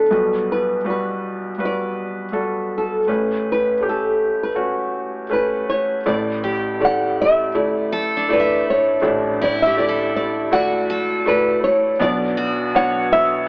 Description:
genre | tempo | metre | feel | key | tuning
acoustic folk-pop ballad | 81 BPM | 4/4 | straight | unclear | A4 = 437 Hz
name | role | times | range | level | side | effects
flamenco guitar | melody | 0.0-13.5 s | A4 to F#5 | -19 LUFS | equal | none
felt-muted upright piano | accompaniment | 0.0-13.5 s | A1 to D5 | -21 LUFS | equal | none
upright bass | bass | 6.1-13.5 s | A1 to B1 | -36 LUFS | equal | none
picked steel-string acoustic guitar | arpeggios | 6.4-13.5 s | D4 to E5 | -23 LUFS | equal | none
room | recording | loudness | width
light reverb | worn, warbling old tape, cassette tape, warbly pitch drift, AM radio sound | -17 LUFS | side -37 dB against mid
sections
0.0-6.1 A section; 6.1-13.5 B section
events
none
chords
0.1 Gmaj7/B; 3.1 Aadd9; 6.1 Asus4; 12.0 Bmadd9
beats
| 0.11 0.85 1.60 2.34 | 3.08 3.83 4.58 5.33 | 6.07 6.82 7.56 8.31 | 9.05 9.79 10.53 11.27 | 12.01 12.75

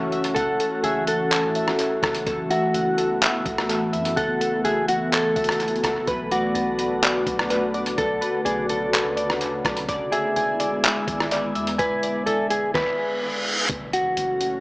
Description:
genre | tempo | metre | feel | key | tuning
hip hop, atmospheric cloud-rap | 126 BPM | 4/4 | half-time | F# minor | A4 = 440 Hz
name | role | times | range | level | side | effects
glassy FM pad | sustained chords | 0.0-14.6 s | C#3 to F#4 | -27 LUFS | left 1 dB | ensemble chorus, built-in reverb, sidechain pumping
glassy digital keys | arpeggios | 0.0-13.7 s | A4 to A5 | -26 LUFS | equal | chorus, low-pass filter, tape echo
soft 808-style bass | bass | 0.0-14.6 s | D1 to F#2 | -39 LUFS | equal | none
trip hop sampler-style drum kit | drums | 0.1-14.5 s | handclaps, hi-hat, kick drum, rim click, snare drum | -26 LUFS | equal | tape echo
mellow electric guitar | melody | 0.3-14.6 s | F#4 to B4 | -25 LUFS | equal | low-pass filter, tape echo
reverse cymbal and impact | sound effects | 13.0-14.6 s | none | -27 LUFS | equal | none
room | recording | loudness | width
light reverb, digital ambience | echo-heavy mix, small speaker sound | -20 LUFS | side -23 dB against mid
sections
0.0-13.7 A section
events
reverse cymbal 13.0-13.7; impact 13.7-14.6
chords
0.0 F#m7; 6.1 Bm7; 9.9 E7; 13.7 F#m7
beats
| 0.36 0.84 1.31 1.79 | 2.27 2.74 3.22 3.69 | 4.17 4.65 5.12 5.60 | 6.08 6.55 7.03 7.50 | 7.98 8.46 8.93 9.41 | 9.88 10.36 10.84 11.31 | 11.79 12.27 12.74 13.22 | 13.70 14.17

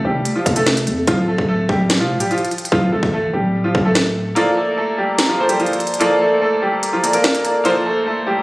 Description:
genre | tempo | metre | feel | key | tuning
hip hop, drill | 146 BPM | 4/4 | half-time | unclear | A4 = 440 Hz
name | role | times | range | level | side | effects
bright upright piano | melody | 0.0-8.4 s | F3 to Bb4 | -19 LUFS | equal | low-pass filter, ping-pong delay
growling 808-style bass | bass | 0.0-4.3 s | C1 to F2 | -20 LUFS | equal | none
drill drum kit | drums | 0.3-7.7 s | hi-hat, kick drum, snare drum | -20 LUFS | equal | none
clear concert grand piano | accompaniment | 4.4-8.4 s | Bb3 to D5 | -17 LUFS | equal | low-pass filter
room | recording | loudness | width
light reverb, small room ambience | recorded on a phone in the room, studio reverb | -15 LUFS | side -20 dB against mid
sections
0.0-8.4 A section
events
hi-hats muted 2.7-4.4; kick muted 4.4-8.4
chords
0.0 F; 1.1 Dm; 4.4 Bbmaj7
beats
0.25 0.67 | 1.08 1.49 1.90 2.31 | 2.72 3.13 3.54 3.95 | 4.36 4.77 5.18 5.60 | 6.01 6.42 6.83 7.24 | 7.65 8.06

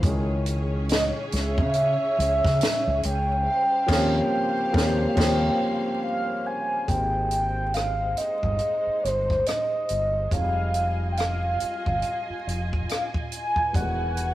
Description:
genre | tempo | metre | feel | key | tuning
R&B, neo-soul | 70 BPM | 4/4 | swing 59% on 16ths | Ab major | A4 = 442 Hz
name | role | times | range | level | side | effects
warm upright piano | accompaniment | 0.0-14.3 s | Eb3 to Ab4 | -29 LUFS | left 1 dB | none
warm studio string section | sustained chords | 0.0-14.3 s | Db3 to Ab5 | -35 LUFS | equal | none
deep dub fingered electric bass | bass | 0.0-14.3 s | E1 to Db3 | -27 LUFS | equal | none
compact cocktail drum kit | drums | 0.0-14.3 s | crash cymbal, hi-hat, kick drum, rim click, snare drum | -27 LUFS | equal | none
mellow horn-like synth lead | melody | 0.9-14.3 s | C5 to Ab5 | -25 LUFS | right 1 dB | chorus, tape echo
warm horn section | stabs | 3.9-5.4 s | F3 to F4 | -34 LUFS | equal | none
room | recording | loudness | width
moderate stone room reverb, RT60 1.0 s | rough rehearsal-room recording, vinyl crackle | -22 LUFS | side -15 dB against mid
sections
0.0-6.9 A section; 6.9-14.3 B section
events
band accent 3.5-6.9; break 5.2-6.9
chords
0.0 Dbmadd9; 3.5 Eb13; 6.9 Abmaj7; 10.3 Fm9; 13.7 Emaj9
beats
| 0.03 0.89 1.74 2.60 | 3.46 4.31 5.17 6.03 | 6.89 7.74 8.60 9.46 | 10.31 11.17 12.03 12.89 | 13.74

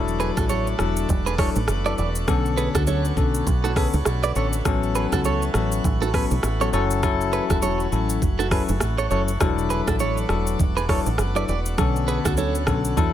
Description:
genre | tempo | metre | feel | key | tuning
afrobeats | 101 BPM | 4/4 | swing 58% on 16ths | unclear | A4 = 440 Hz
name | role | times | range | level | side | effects
bell-like tine electric piano | accompaniment | 0.0-13.1 s | D3 to A4 | -25 LUFS | left 8 dB | none
pipe organ, plenum | sustained chords | 0.0-13.1 s | D3 to F#4 | -31 LUFS | equal | none
deep dub fingered electric bass | bass | 0.0-13.1 s | E1 to E2 | -25 LUFS | equal | none
afro-pop drum kit | drums | 0.1-13.1 s | hi-hat, kick drum, rim click, shaker | -24 LUFS | equal | none
direct-recorded clean electric guitar | riff | 0.2-12.6 s | F#4 to D5 | -28 LUFS | right 7 dB | spring reverb, ping-pong delay
bongos and congas | percussion | 0.4-13.1 s | none | -32 LUFS | right 10 dB | none
room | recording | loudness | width
light reverb | none | -20 LUFS | side -11 dB against mid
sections
0.0-13.1 A section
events
none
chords
0.0 E9sus4; 2.3 Bm9; 4.7 A69; 6.7 F#m7; 9.4 E9sus4; 11.8 Bm9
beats
0.50 1.09 1.68 | 2.28 2.87 3.47 4.06 | 4.66 5.25 5.84 6.44 | 7.03 7.62 8.22 8.81 | 9.41 10.00 10.60 11.19 | 11.78 12.38 12.97

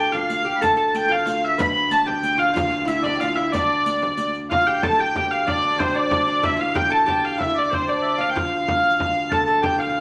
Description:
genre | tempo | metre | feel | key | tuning
medieval dance | 124 BPM (dotted quarters) | 6/8 | straight | D dorian | A4 = 440 Hz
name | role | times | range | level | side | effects
warm hurdy-gurdy | melody | 0.0-10.0 s | C5 to B5 | -23 LUFS | equal | none
bright shawm | second line | 0.0-10.0 s | C5 to B5 | -29 LUFS | equal | none
oud | second line | 0.0-10.0 s | C4 to B4 | -30 LUFS | equal | none
warm viola da gamba | drone | 0.0-10.0 s | D2 | -32 LUFS | equal | none
frame drum | percussion | 0.1-9.9 s | none | -32 LUFS | equal | none
riq | percussion | 0.3-4.4 s | none | -38 LUFS | equal | none
room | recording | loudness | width
wet studio reverb, RT60 0.9 s | none | -21 LUFS | mono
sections
0.0-4.5 A section; 4.5-10.0 B section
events
none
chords
none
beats
0.14 | 0.62 1.11 | 1.59 2.08 | 2.56 3.05 | 3.53 4.02 | 4.50 4.98 | 5.47 5.95 | 6.43 6.91 | 7.39 7.87 | 8.35 8.83 | 9.31 9.79

